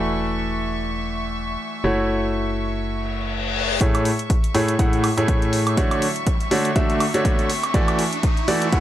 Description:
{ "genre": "piano house", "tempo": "122 BPM", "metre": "4/4", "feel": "swing 56% on 16ths", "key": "A major", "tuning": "A4 = 440 Hz", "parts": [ { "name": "warm chamber string section", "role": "sustained chords", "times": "0.0-8.8 s", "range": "E5 to C#6", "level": "-30 LUFS", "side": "equal", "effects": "sidechain pumping" }, { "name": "bright concert grand piano", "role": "riff", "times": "0.0-8.8 s", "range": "A2 to F#5", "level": "-22 LUFS", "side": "equal", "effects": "sidechain pumping, low-pass filter, analog delay" }, { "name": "organ-like FM bass", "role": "bass", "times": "0.0-3.8 s", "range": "E1 to F#1", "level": "-28 LUFS", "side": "equal", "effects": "transformer saturation, sidechain pumping" }, { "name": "reverse cymbal and riser", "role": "sound effects", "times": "3.1-8.8 s", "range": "none", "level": "-29 LUFS", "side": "left 2 dB", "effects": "none" }, { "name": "electronic hi-hat and woodblock", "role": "drums", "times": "3.8-8.8 s", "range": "none", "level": "-28 LUFS", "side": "right 2 dB", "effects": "high-pass filter on cymbals, low-pass filter on cymbals, high-pass filter on hats, low-pass filter on hats, high-pass filter on perc, low-pass filter on perc" }, { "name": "electronic kick drum", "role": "drums", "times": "3.8-8.8 s", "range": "none", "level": "-20 LUFS", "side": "equal", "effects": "none" } ], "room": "light reverb", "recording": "dry, gritty hardware recording, transformer saturation", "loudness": "-19 LUFS", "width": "side -12 dB against mid", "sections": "0.0-3.8 A section; 3.8-8.8 B section", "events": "reverse cymbal 3.1-3.8; build-up 3.8-8.8; riser 3.8-8.8", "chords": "0.0 E9sus4; 1.8 F#m7; 3.8 Amaj7; 5.8 Dmaj7; 7.5 E9sus4" }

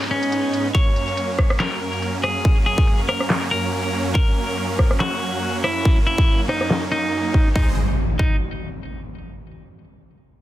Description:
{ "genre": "heavy wobble dubstep", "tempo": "141 BPM", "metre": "4/4", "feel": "swing 55% on 16ths, half-time", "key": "G# minor", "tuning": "A4 = 440 Hz", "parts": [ { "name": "supersaw chords", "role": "sustained chords", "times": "0.0-7.8 s", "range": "F#2 to D#5", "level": "-26 LUFS", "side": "right 2 dB", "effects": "sidechain pumping" }, { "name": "clean electric guitar", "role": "melody", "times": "0.1-8.4 s", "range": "C#4 to C#5", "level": "-23 LUFS", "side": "equal", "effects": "digital delay" }, { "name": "dubstep drum kit", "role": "drums", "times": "0.2-7.4 s", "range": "handclaps, hi-hat, rim click, snare drum", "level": "-24 LUFS", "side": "equal", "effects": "low-pass filter on hats, small room ambience, low-pass filter on cymbals, low-pass filter on snare" }, { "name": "electronic kick drum", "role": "drums", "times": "0.7-8.3 s", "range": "none", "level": "-17 LUFS", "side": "equal", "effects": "small room ambience" }, { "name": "impact", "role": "sound effects", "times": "7.6-9.3 s", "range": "none", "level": "-25 LUFS", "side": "equal", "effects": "none" } ], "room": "light reverb", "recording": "dense, heavily limited modern master", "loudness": "-18 LUFS", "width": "side -14 dB against mid", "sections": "0.0-7.6 A section; 7.6-9.3 B section", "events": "filter sweep on drum 0.0-7.6", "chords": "0.0 G#m; 0.7 F#; 7.6 G#" }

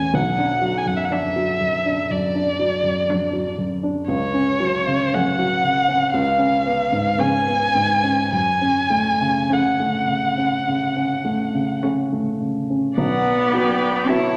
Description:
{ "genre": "classical, slow romantic movement for piano quartet", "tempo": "50-62 BPM", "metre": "4/4", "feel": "rubato", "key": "F# minor", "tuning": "A4 = 437 Hz", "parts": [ { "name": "warm violin", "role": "melody", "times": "0.0-14.4 s", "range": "C#5 to A5", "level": "-23 LUFS", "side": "equal", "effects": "none" }, { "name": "dark grand piano", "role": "accompaniment", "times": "0.0-14.4 s", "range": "A1 to F#4", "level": "-24 LUFS", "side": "equal", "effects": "none" }, { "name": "warm cello", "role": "second line", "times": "1.1-14.4 s", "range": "C#3 to E4", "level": "-26 LUFS", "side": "equal", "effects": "none" }, { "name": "clear viola", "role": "accompaniment", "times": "1.1-14.4 s", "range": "A3 to D5", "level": "-33 LUFS", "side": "equal", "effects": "none" } ], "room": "wet recital hall reverb, RT60 1.7 s", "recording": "none", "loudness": "-20 LUFS", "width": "mono", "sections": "0.0-13.0 A section; 13.0-14.4 B section", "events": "none", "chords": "0.1 Bm; 4.1 F#m/C#; 6.1 C#7; 8.3 F#m; 13.0 Bm" }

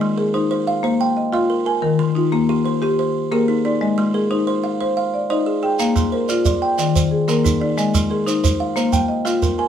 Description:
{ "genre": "southern african traditional, mbira-style interlocking cycle", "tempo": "121 BPM (dotted quarters)", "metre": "12/8", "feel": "straight", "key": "unclear", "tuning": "A4 = 441 Hz", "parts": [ { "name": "buzzing kalimba", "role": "arpeggios", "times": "0.0-9.7 s", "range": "Eb3 to G5", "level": "-22 LUFS", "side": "right 7 dB", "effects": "none" }, { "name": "marimba with medium mallets", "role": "arpeggios", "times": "0.0-9.7 s", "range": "Eb3 to Ab5", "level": "-18 LUFS", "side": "left 3 dB", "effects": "none" }, { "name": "shekere", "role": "percussion", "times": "5.8-9.6 s", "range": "none", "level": "-21 LUFS", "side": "right 3 dB", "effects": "none" } ], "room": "moderate studio reverb, RT60 0.5 s", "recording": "none", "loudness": "-16 LUFS", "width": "side -9 dB against mid", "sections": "0.0-9.7 A section", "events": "none", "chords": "0.0 Ab; 0.8 Bb5; 1.8 Eb; 3.8 Ab; 5.8 Bb; 6.8 Eb; 7.8 Ab; 8.8 Bb5" }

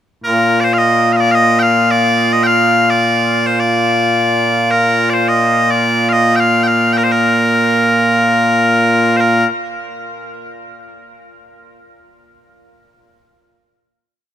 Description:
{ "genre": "scottish traditional, Scottish pipe music", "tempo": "107 BPM", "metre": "4/4", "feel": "straight", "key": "Bb major", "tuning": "A4 = 440 Hz", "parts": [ { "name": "loud bright bagpipes", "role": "solo", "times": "0.2-9.5 s", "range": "Bb2 to G5", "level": "-11 LUFS", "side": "equal", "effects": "none" } ], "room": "moderate huge ambient reverb, RT60 6.8 s", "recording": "minimal, uncompressed stereo recording", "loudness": "-10 LUFS", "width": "side -10 dB against mid", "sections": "0.2-9.2 A section; 9.2-11.4 final note", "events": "none", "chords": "none" }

